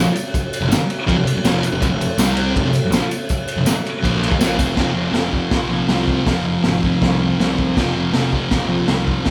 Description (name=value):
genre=garage rock duo or trio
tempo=161 BPM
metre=4/4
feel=straight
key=F minor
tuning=A4 = 440 Hz
part: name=thick fuzz guitar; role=riff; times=0.0-9.3 s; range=F2 to C4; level=-21 LUFS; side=equal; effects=distortion
part: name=fuzz picked electric bass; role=bass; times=0.0-9.3 s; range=F1 to F2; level=-26 LUFS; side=equal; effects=overdrive
part: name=crunchy breakbeat drum kit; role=drums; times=0.2-9.3 s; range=crash cymbal, hi-hat, kick drum, ride cymbal, snare drum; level=-22 LUFS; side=equal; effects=none
part: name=tambourine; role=percussion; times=0.2-4.7 s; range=none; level=-36 LUFS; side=equal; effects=none
room=light reverb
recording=band playing live in one room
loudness=-18 LUFS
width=mono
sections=0.0-4.8 A section; 4.8-9.3 B section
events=none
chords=0.0 F5; 2.2 C5; 2.5 Fm; 4.8 F5